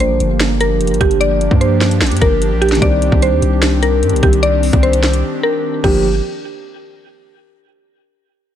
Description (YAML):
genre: hip hop, trap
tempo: 149 BPM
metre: 4/4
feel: half-time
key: G minor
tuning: A4 = 439 Hz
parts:
  - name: mallet-like synth pluck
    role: melody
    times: 0.0-6.0 s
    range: G4 to D5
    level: -17 LUFS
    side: equal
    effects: chorus, low-pass filter, ping-pong delay
  - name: dark grand piano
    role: accompaniment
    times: 0.0-6.1 s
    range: D3 to G4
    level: -23 LUFS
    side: left 5 dB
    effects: low-pass filter
  - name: airy breathy pad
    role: sustained chords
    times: 0.0-6.0 s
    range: Eb3 to G4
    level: -20 LUFS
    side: right 1 dB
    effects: chorus
  - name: long sustained 808-style bass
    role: bass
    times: 0.0-6.2 s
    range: F1 to G2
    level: -16 LUFS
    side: equal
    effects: none
  - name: trap drum kit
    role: drums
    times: 0.0-5.9 s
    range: crash cymbal, hi-hat, kick drum, snare drum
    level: -17 LUFS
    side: equal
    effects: vintage 12-bit sampler grit
room: little or no reverb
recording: none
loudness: -11 LUFS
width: side -10 dB against mid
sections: 0.0-6.0 A section; 6.0-7.7 B section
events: break 5.2-6.0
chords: 0.0 Gm7; 2.8 Cmadd9; 5.8 Gm7; 6.0 N.C.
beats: 0.00 0.40 0.81 | 1.21 1.61 2.01 2.42 | 2.82 3.22 3.62 4.03 | 4.43 4.83 5.24 5.64 | 6.04